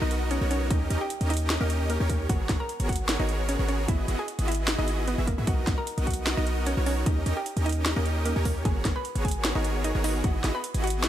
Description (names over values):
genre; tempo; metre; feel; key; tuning
future bass; 151 BPM; 4/4; swing 54% on 16ths, half-time; unclear; A4 = 441 Hz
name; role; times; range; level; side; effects
mallet-like synth pluck; melody; 0.0-11.1 s; A#3 to B5; -33 LUFS; equal; chorus, sidechain pumping, digital delay
supersaw chords; riff; 0.0-11.1 s; B3 to E5; -31 LUFS; right 1 dB; sidechain pumping
warm 808-style bass; bass; 0.0-11.1 s; G#1 to G#2; -28 LUFS; equal; sidechain pumping
impact; sound effects; 0.0-0.7 s; none; barely audible; none; none
trap drum kit; drums; 0.1-11.1 s; hi-hat, snare drum; -32 LUFS; equal; small room reverb
electronic kick drum; drums; 0.7-10.3 s; none; -27 LUFS; equal; overdrive, small room reverb
room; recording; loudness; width
little or no reverb; none; -24 LUFS; side -12 dB against mid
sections
0.0-11.1 A section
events
impact 0.0-0.7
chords
0.0 Bmaj7; 0.7 D#7; 2.3 G#m11; 3.9 Emaj9/G#; 5.5 Bmaj7; 7.1 D#7; 8.7 G#m11; 10.2 Emaj9/G#